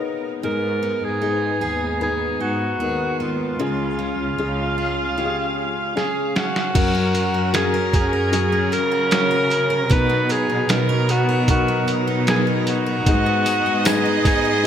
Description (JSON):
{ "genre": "pop ballad", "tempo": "76 BPM", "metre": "4/4", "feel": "straight", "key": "F# major", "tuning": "A4 = 441 Hz", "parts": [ { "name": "dark upright piano", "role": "accompaniment", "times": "0.0-14.7 s", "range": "G#2 to A#5", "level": "-26 LUFS", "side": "left 6 dB", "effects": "none" }, { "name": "warm studio string section", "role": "sustained chords", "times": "0.0-14.7 s", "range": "C#3 to E#5", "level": "-29 LUFS", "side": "equal", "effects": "none" }, { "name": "clear alto saxophone", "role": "melody", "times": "0.4-14.7 s", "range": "E#4 to B4", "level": "-22 LUFS", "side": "right 1 dB", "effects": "none" }, { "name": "picked steel-string acoustic guitar", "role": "arpeggios", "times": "0.4-14.7 s", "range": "G#2 to A#4", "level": "-28 LUFS", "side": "right 5 dB", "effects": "none" }, { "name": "warm studio cello section", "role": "bass", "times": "0.4-14.7 s", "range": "C#2 to C#3", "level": "-25 LUFS", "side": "equal", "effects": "none" }, { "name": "lo-fi sampler-style drum kit", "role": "drums", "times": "6.0-14.4 s", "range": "crash cymbal, hi-hat, kick drum, snare drum", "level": "-22 LUFS", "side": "right 1 dB", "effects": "overdrive, gated reverb" }, { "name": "warm symphonic violin section", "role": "second line", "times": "13.1-14.7 s", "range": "D#5", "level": "-26 LUFS", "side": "right 3 dB", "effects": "none" }, { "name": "tambourine", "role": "percussion", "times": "13.5-14.4 s", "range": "none", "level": "-33 LUFS", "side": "left 6 dB", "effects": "none" } ], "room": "moderate lush hall reverb, RT60 1.9 s", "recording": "bright 1980s-style digital production", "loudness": "-18 LUFS", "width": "side -9 dB against mid", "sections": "0.0-6.7 A section; 6.7-14.7 B section", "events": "upright piano fill 0.0-0.4; drum fill 6.0-6.7", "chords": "0.4 G#m; 3.6 C#; 6.7 F#; 9.9 Bmaj7; 13.1 G#m" }